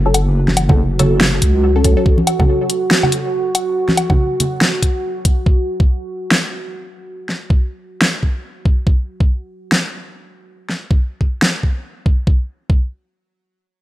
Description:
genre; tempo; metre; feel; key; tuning
deep dubstep; 141 BPM; 4/4; swing 58% on 16ths, half-time; F# minor; A4 = 440 Hz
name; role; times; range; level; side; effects
deep dark ambient pad; sustained chords; 0.2-8.9 s; F#4; -22 LUFS; right 2 dB; chorus, built-in reverb, vintage 12-bit sampler grit
wobble bass; bass; 0.0-2.0 s; F#1 to C#2; -15 LUFS; equal; chorus, tube saturation
filtered dub chord stab; stabs; 0.1-2.2 s; F#3 to A4; -23 LUFS; left 2 dB; phaser, dub echo
dubstep drum kit; drums; 0.1-11.5 s; hi-hat, snare drum, woodblock; -16 LUFS; equal; overdrive
congas; percussion; 0.5-4.5 s; none; -19 LUFS; right 1 dB; none
electronic kick drum; drums; 0.7-12.8 s; none; -14 LUFS; equal; overdrive
room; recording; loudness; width
light reverb; dry, gritty hardware recording; -14 LUFS; side -14 dB against mid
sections
0.0-12.3 A section; 12.3-13.8 B section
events
none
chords
0.0 F#m; 5.5 N.C.

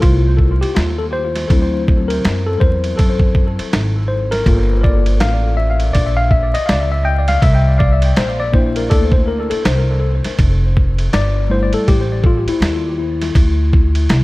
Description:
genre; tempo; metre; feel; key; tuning
hip hop, jazz-hop; 81 BPM; 4/4; swing 61% on 16ths; F major; A4 = 440 Hz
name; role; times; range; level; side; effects
mellow tine electric piano; accompaniment; 0.0-14.2 s; F#3 to G5; -19 LUFS; left 2 dB; medium stereo tremolo, tape echo
upright bass; bass; 0.0-14.2 s; F1 to F#2; -16 LUFS; equal; none
dusty soul sampler-style drum kit; drums; 0.0-14.2 s; hi-hat, kick drum, ride cymbal, snare drum; -16 LUFS; equal; none
room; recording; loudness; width
little or no reverb; echo-heavy mix, vinyl crackle; -13 LUFS; side -20 dB against mid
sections
0.0-10.4 A section; 10.4-14.2 A section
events
tine electric piano solo 0.0-10.4, 10.4-14.2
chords
0.0 Fmaj7; 1.5 D7; 4.5 Gm7; 7.4 C7; 10.4 Fmaj7; 13.4 D7(no3)

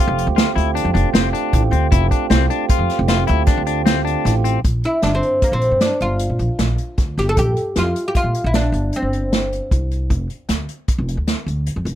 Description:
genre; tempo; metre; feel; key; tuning
progressive instrumental, band music in an uneven meter; 154 BPM; 7/4; straight; Bb lydian; A4 = 440 Hz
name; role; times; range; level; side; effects
percussive tonewheel organ; accompaniment; 0.0-4.6 s; A3 to G4; -23 LUFS; right 16 dB; overdrive
clean electric guitar; arpeggios; 0.0-4.6 s; C4 to F4; -22 LUFS; left 19 dB; none
upright bass; bass; 0.1-11.9 s; F1 to Bb2; -20 LUFS; equal; none
unplugged drum kit; drums; 0.2-11.9 s; hi-hat, kick drum, snare drum; -18 LUFS; equal; none
oud; melody; 4.9-9.5 s; Bb3 to A4; -20 LUFS; equal; none
room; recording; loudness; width
little or no reverb; none; -16 LUFS; side -12 dB against mid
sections
0.0-4.6 A section; 4.6-12.0 B section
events
none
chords
0.0 Fadd9; 4.6 Bb5; 10.1 N.C.

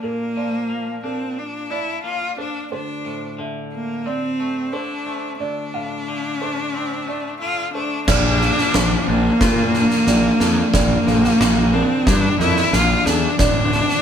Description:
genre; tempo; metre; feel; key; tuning
post-rock; 90 BPM; 4/4; straight; unclear; A4 = 438 Hz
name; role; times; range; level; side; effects
clear cello; melody; 0.0-14.0 s; Bb3 to F4; -20 LUFS; equal; none
felt-muted upright piano; arpeggios; 0.0-14.0 s; A4 to F5; -30 LUFS; right 5 dB; none
twangy electric guitar; arpeggios; 0.0-14.0 s; D2 to F4; -29 LUFS; left 3 dB; none
warbly tape-like pad; sustained chords; 9.0-14.0 s; F3 to A5; -32 LUFS; equal; none
fuzz picked electric bass; bass; 8.1-13.8 s; D1 to Bb2; -20 LUFS; equal; overdrive
oversized low-tuned drum kit; drums; 8.1-14.0 s; crash cymbal, kick drum, snare drum; -19 LUFS; equal; none
room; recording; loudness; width
moderate stone room reverb, RT60 0.9 s; band playing live in one room; -17 LUFS; side -8 dB against mid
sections
0.0-8.1 A section; 8.1-14.0 B section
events
none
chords
0.0 Bb; 2.7 Dm7; 8.1 Bbmaj7; 13.4 Dm7

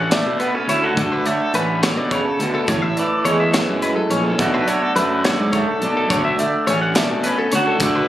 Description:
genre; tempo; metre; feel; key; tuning
math rock and midwest emo; 70 BPM (dotted quarters); 6/8; straight; unclear; A4 = 443 Hz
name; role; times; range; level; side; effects
electric guitar through a small old amp; accompaniment; 0.0-8.1 s; A2 to F#4; -20 LUFS; right 2 dB; none
twelve-string electric guitar; arpeggios; 0.0-8.1 s; A4 to F#5; -22 LUFS; left 3 dB; wide subtle chorus
fuzz fingered electric bass; bass; 0.0-8.0 s; A1 to B2; -22 LUFS; equal; overdrive
modern studio drum kit; drums; 0.1-7.9 s; hi-hat, kick drum, snare drum; -23 LUFS; equal; none
room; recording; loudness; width
light reverb; recorded on a phone in the room, club reverb; -16 LUFS; side -13 dB against mid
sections
0.0-8.1 A section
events
none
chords
0.0 Dmaj7(no3); 2.7 Amaj7; 4.4 Bm7; 6.1 Dmaj7

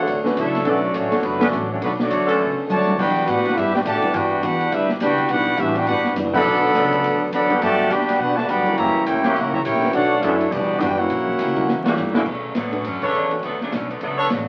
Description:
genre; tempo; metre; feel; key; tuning
jazz, big band swing; 207 BPM; 4/4; swing 60% on 8ths; B minor; A4 = 439 Hz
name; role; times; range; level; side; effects
warm trumpet section; melody; 0.0-12.0 s; A3 to B5; -23 LUFS; equal; none
warm trombone section; second line; 0.0-12.0 s; B2 to G4; -26 LUFS; equal; none
clear trombone section; sustained chords; 0.0-12.2 s; D3 to C#5; -27 LUFS; equal; none
upright bass; bass; 0.0-14.5 s; E1 to B2; -34 LUFS; equal; none
picked steel-string acoustic guitar; accompaniment; 0.1-14.5 s; E3 to C#5; -33 LUFS; equal; none
open jazz drum kit; drums; 0.1-14.4 s; crash cymbal, hi-hat, kick drum, ride cymbal, snare drum, toms; -30 LUFS; equal; none
warm concert grand piano; accompaniment; 0.2-1.5, 4.0-13.4 s; G3 to B4; -28 LUFS; equal; none
clear saxophone section; melody; 11.9-14.5 s; A#2 to D4; -28 LUFS; equal; none
clear trumpet section; stabs; 13.0-14.3 s; D4 to C#5; -23 LUFS; equal; none
room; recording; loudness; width
wet studio ambience, RT60 0.5 s; very old 78 rpm record, vinyl crackle; -20 LUFS; mono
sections
0.0-12.3 A section; 12.3-14.5 B section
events
band accent 1.4, 6.3, 11.8, 13.0; drum fill 2.7, 11.7-12.3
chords
0.0 Bm9; 3.0 Em9; 6.5 Bm9; 7.6 Gmaj7; 8.8 F#7b9; 9.9 Bm9; 10.5 Em9; 11.1 F#7b9; 12.3 Bm9

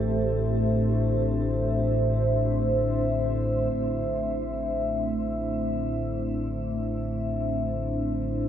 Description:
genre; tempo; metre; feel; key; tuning
dark ambient drone; free time; none; none; A minor; A4 = 440 Hz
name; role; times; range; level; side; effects
dark analog pad; sustained chords; 0.0-8.5 s; A3 to E5; -26 LUFS; equal; chorus, phaser, shimmer reverb
gamelan-type bronze metallophone; arpeggios; 0.0-3.9 s; G4; -40 LUFS; right 3 dB; diffuse ambient delay, shimmer reverb
deep rumbling drone; drone; 0.0-8.5 s; A1 to A2; -28 LUFS; left 1 dB; built-in reverb
room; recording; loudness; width
wet huge ambient reverb, RT60 7.9 s; none; -24 LUFS; side -10 dB against mid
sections
0.0-3.7 A section; 3.7-8.5 B section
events
none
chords
0.0 Am7

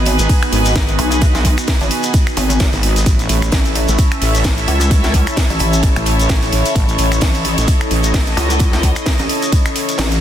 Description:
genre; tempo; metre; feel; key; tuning
bass house; 130 BPM; 4/4; swing 57% on 16ths; unclear; A4 = 440 Hz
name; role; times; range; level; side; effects
sweeping resonant pad; sustained chords; 0.0-10.2 s; B3 to E5; -22 LUFS; equal; chorus, sidechain pumping
pulsing pluck wobble bass; bass; 0.0-10.2 s; G#1 to C#2; -17 LUFS; equal; chorus, tube saturation, sidechain pumping
warm studio string section; texture; 0.0-10.2 s; D#4 to A5; -23 LUFS; right 1 dB; sidechain pumping
big rock drum kit; drums; 0.1-10.2 s; hi-hat, snare drum; -30 LUFS; right 4 dB; none
house drum kit; drums; 0.1-10.2 s; finger snaps, hi-hat, ride cymbal, snare drum; -21 LUFS; equal; none
wobble bass; bass; 0.2-8.4 s; G#1 to A1; -16 LUFS; equal; chorus, tube saturation, sidechain pumping
shekere; percussion; 0.2-10.2 s; none; -26 LUFS; left 3 dB; none
electronic kick drum; drums; 0.3-9.6 s; none; -15 LUFS; equal; none
room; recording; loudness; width
small room ambience; dense, heavily limited modern master; -12 LUFS; side -10 dB against mid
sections
0.0-10.2 A section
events
kick drops out 10.0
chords
0.0 G#m; 3.1 A

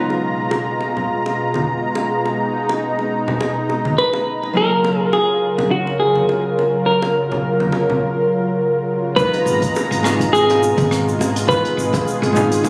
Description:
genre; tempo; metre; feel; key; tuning
sunset chillout; 104 BPM; 4/4; swing 56% on 16ths; G# dorian; A4 = 441 Hz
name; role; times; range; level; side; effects
hollow-body jazz guitar; accompaniment; 0.0-12.7 s; F#3 to B4; -26 LUFS; equal; delay
lush unison pad; sustained chords; 0.0-12.7 s; B2 to A#5; -22 LUFS; equal; chorus
bongos and congas; percussion; 0.1-12.7 s; none; -28 LUFS; equal; none
semi-hollow electric guitar; melody; 4.0-12.3 s; F#4 to B4; -20 LUFS; equal; delay
electronic kick drum; drums; 9.2-12.0 s; none; -28 LUFS; equal; none
jazz brush drum kit; drums; 9.2-12.7 s; hi-hat, rim click, shaker; -31 LUFS; equal; none
woody fretless electric bass; bass; 9.5-12.7 s; G#1; -25 LUFS; equal; subtle chorus
room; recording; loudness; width
moderate plate reverb, RT60 1.4 s, small room ambience; recorded on a phone in the room, studio reverb; -18 LUFS; mono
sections
0.0-9.2 A section; 9.2-12.7 B section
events
none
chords
0.0 G#m69; 4.6 F#maj7; 9.2 G#m69

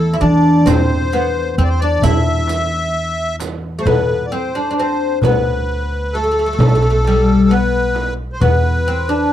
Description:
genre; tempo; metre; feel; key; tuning
Arabic maqam ensemble; 132 BPM (eighths); 10/8; straight; E maqam bayati; A4 = 437 Hz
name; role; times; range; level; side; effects
oud; melody; 0.0-9.3 s; G3 to E4; -16 LUFS; left 1 dB; none
accordion; second line; 0.0-9.3 s; A4 to E5; -22 LUFS; left 1 dB; light tremolo tuning
upright bass; bass; 0.0-9.3 s; B1 to E3; -18 LUFS; equal; none
warm cello; drone; 0.0-3.9 s; E2; -28 LUFS; right 1 dB; stereo widening
darbuka; percussion; 0.2-9.0 s; none; -21 LUFS; left 3 dB; none
frame drum; percussion; 0.7-8.6 s; none; -23 LUFS; right 5 dB; none
riq; percussion; 0.7-3.6 s; none; -26 LUFS; right 7 dB; none
room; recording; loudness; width
light reverb; dry, close 1970s-style studio recording; -13 LUFS; side -11 dB against mid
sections
0.0-3.9 A section; 3.9-9.3 B section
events
none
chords
none

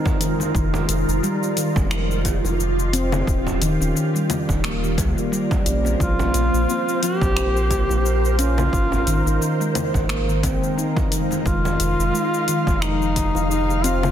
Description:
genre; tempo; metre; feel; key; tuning
organic downtempo; 88 BPM; 4/4; swing 56% on 16ths; F minor; A4 = 440 Hz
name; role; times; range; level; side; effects
ethereal airy pad; sustained chords; 0.0-14.1 s; Eb3 to F5; -26 LUFS; right 2 dB; ensemble chorus, built-in reverb, phaser, sidechain pumping
handpan; arpeggios; 0.0-14.1 s; Eb3 to Eb4; -24 LUFS; left 1 dB; ping-pong delay
deep house drum kit; drums; 0.1-14.1 s; cabasa, congas, finger snaps, hi-hat; -28 LUFS; left 4 dB; overdrive, soft clipping on snare
electronic kick drum; drums; 0.1-13.3 s; none; -24 LUFS; equal; overdrive
bongos and congas; percussion; 0.1-14.1 s; none; -32 LUFS; right 3 dB; none
round analog bass; bass; 0.5-14.1 s; Eb1 to Db2; -23 LUFS; equal; sidechain pumping
mellow duduk; melody; 6.0-14.1 s; Eb4 to G4; -24 LUFS; left 1 dB; digital delay
room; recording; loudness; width
light reverb; dense, heavily limited modern master; -18 LUFS; side -10 dB against mid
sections
0.0-14.1 A section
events
none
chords
0.0 Ab69; 0.5 Fm9; 3.3 Eb13; 6.0 Bbmadd9; 8.7 Ab69; 11.5 Fm9

